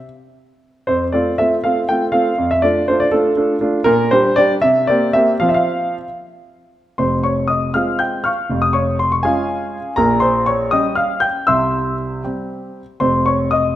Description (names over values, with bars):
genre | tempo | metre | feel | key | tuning
classical-period piano sonatina | 76-82 BPM (dotted quarters) | 6/8 | rubato | F major, F minor from 7.0 s | A4 = 439 Hz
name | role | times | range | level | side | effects
clear concert grand piano | solo | 0.0-13.8 s | F1 to G6 | -14 LUFS | equal | none
room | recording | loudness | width
moderate recital hall reverb, RT60 1.8 s | none | -14 LUFS | side -13 dB against mid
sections
0.0-7.0 A section; 7.0-13.8 B section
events
none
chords
0.0 N.C.; 0.9 F; 2.4 Dm/F; 3.9 Gm/Bb; 4.6 C5; 5.4 F5; 7.0 Fm; 8.5 Db/F; 10.0 Gdim/Bb; 11.5 C; 13.0 F5